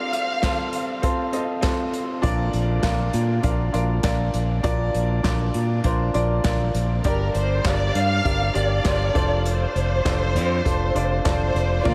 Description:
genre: piano-driven pop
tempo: 100 BPM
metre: 4/4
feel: straight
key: Bb major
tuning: A4 = 440 Hz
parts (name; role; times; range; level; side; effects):
- warm studio violin section; melody; 0.0-1.0, 7.1-11.9 s; Bb4 to F5; -28 LUFS; equal; tape echo
- bright upright piano; accompaniment; 0.0-11.9 s; G2 to F5; -28 LUFS; equal; none
- unplugged drum kit; drums; 0.1-11.9 s; crash cymbal, handclaps, hi-hat, kick drum, snare drum; -30 LUFS; equal; none
- modern bright fingered electric bass; bass; 2.2-11.9 s; F1 to Bb2; -25 LUFS; equal; none
- warm studio string section; sustained chords; 11.8-11.9 s; D3 to F4; -25 LUFS; equal; none
room: moderate huge ambient reverb, RT60 8.3 s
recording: dreamy mix soaked in reverb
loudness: -22 LUFS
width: mono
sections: 0.0-11.9 A section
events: none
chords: 0.0 F; 2.2 Bb; 7.0 Gm; 9.2 F6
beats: 0.43 1.03 1.63 | 2.23 2.84 3.44 4.04 | 4.64 5.24 5.84 6.44 | 7.05 7.65 8.25 8.85 | 9.45 10.05 10.65 11.25 | 11.86

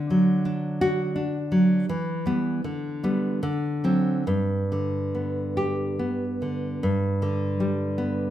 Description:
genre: romantic piece for solo classical guitar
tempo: 68-86 BPM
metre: 3/4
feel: rubato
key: G major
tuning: A4 = 440 Hz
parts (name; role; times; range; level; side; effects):
- nylon-string guitar; solo; 0.0-8.3 s; G2 to G4; -23 LUFS; equal; none
room: moderate recital hall reverb, RT60 1.6 s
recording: minimal, uncompressed stereo recording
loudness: -23 LUFS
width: side -12 dB against mid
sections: 0.0-6.8 A section; 6.8-8.3 A section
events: none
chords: 0.0 D; 1.9 Em; 2.6 G/D; 3.4 D7; 4.3 G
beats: 0.44 1.15 | 1.87 2.63 3.42 | 4.26 5.13 5.98 | 6.82 7.59

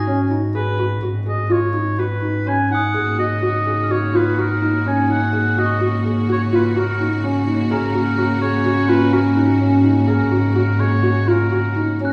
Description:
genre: contemporary instrumental, chamber music in an uneven meter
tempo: 126 BPM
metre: 5/4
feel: straight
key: unclear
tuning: A4 = 440 Hz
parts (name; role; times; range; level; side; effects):
- warm oboe; melody; 0.0-12.0 s; G#4 to G#5; -26 LUFS; equal; none
- dark clarinet; second line; 0.0-12.1 s; C#4 to F#4; -25 LUFS; equal; none
- warm double bass; bass; 0.0-12.1 s; G#1; -23 LUFS; equal; none
- glockenspiel with soft plastic mallets; texture; 0.0-8.2, 12.1 s; A#5 to A#6; -35 LUFS; equal; none
- felt-muted upright piano; arpeggios; 0.1-12.1 s; C#4 to G#4; -24 LUFS; equal; none
- bright studio string section; sustained chords; 2.9-12.1 s; C#3 to F#4; -27 LUFS; equal; none
room: wet recital hall reverb, RT60 1.6 s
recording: heard from further back in the room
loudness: -18 LUFS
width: mono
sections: 0.0-12.1 A section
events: none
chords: 0.0 G#m7; 2.9 F#/G#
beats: 0.07 | 0.55 1.02 1.50 1.98 2.46 | 2.95 3.43 3.91 4.39 4.86 | 5.34 5.82 6.29 6.77 7.24 | 7.71 8.18 8.66 9.13 9.60 | 10.08 10.55 11.03 11.52 12.00

